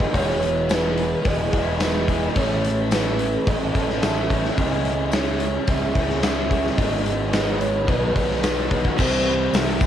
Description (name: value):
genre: rock, shoegaze and dream pop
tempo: 109 BPM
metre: 4/4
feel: straight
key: E major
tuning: A4 = 437 Hz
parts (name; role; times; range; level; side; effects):
- pure breathy sine lead; melody; 0.0-9.9 s; B4 to E5; -27 LUFS; right 1 dB; chorus, cassette tape, analog delay
- icy glass pad; sustained chords; 0.0-9.9 s; E4 to C#6; -33 LUFS; left 1 dB; chorus, built-in reverb
- overdriven semi-hollow guitar; riff; 0.0-9.9 s; E2 to B4; -27 LUFS; left 9 dB; lush chorus
- overdriven semi-hollow guitar; riff; 0.0-9.9 s; G#2 to E4; -26 LUFS; right 7 dB; reverse reverb
- growling fingered electric bass; bass; 0.0-9.9 s; E1 to C#2; -28 LUFS; equal; overdrive
- gated 80s drum kit; drums; 0.0-9.9 s; crash cymbal, hi-hat, kick drum, snare drum; -23 LUFS; left 1 dB; none
- tambourine; percussion; 0.7-9.9 s; none; -41 LUFS; left 14 dB; none
- crunchy overdriven guitar; riff; 9.0-9.9 s; C3 to C4; -27 LUFS; left 1 dB; none
room: moderate booth ambience, RT60 0.3 s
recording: home recording on cassette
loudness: -19 LUFS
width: side -10 dB against mid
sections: 0.0-9.0 A section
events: none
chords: 0.1 E; 2.4 Aadd9; 4.6 C#m; 6.8 G#m7; 7.9 Badd9; 9.0 Cmaj7